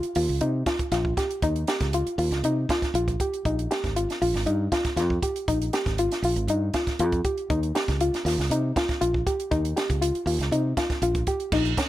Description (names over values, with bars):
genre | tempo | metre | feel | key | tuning
afrobeat | 119 BPM | 4/4 | straight | unclear | A4 = 440 Hz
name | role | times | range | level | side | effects
soft round pluck | arpeggios | 0.0-11.9 s | Db4 to G4 | -26 LUFS | left 1 dB | chorus
fingered electric bass | bass | 0.0-11.7 s | Ab1 to C3 | -27 LUFS | right 1 dB | none
compact cocktail drum kit | drums | 0.0-11.9 s | crash cymbal, hi-hat, kick drum, snare drum | -29 LUFS | right 1 dB | none
room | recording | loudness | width
light reverb | none | -23 LUFS | side -14 dB against mid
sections
0.0-11.5 A section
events
none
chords
0.0 Eb; 3.5 Bb7sus4; 7.5 Eb7